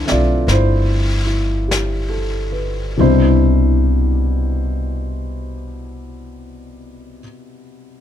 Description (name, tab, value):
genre	jazz ballad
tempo	45-50 BPM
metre	4/4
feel	swing 69% on 8ths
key	unclear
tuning	A4 = 440 Hz
part	dark baby grand piano	accompaniment	0.0-8.0 s	B2 to E5	-20 LUFS	left 2 dB	none
part	upright bass	bass	0.0-7.2 s	G1 to C2	-18 LUFS	equal	none
part	jazz brush drum kit	drums	0.1-3.6 s	brushed snare drum, hi-hat, snare drum	-26 LUFS	left 3 dB	none
room	little or no reverb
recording	none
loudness	-14 LUFS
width	side -10 dB against mid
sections	0.0-3.0 A section; 3.0-8.0 B section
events	slowing down 0.0-3.0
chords	0.0 Cmaj9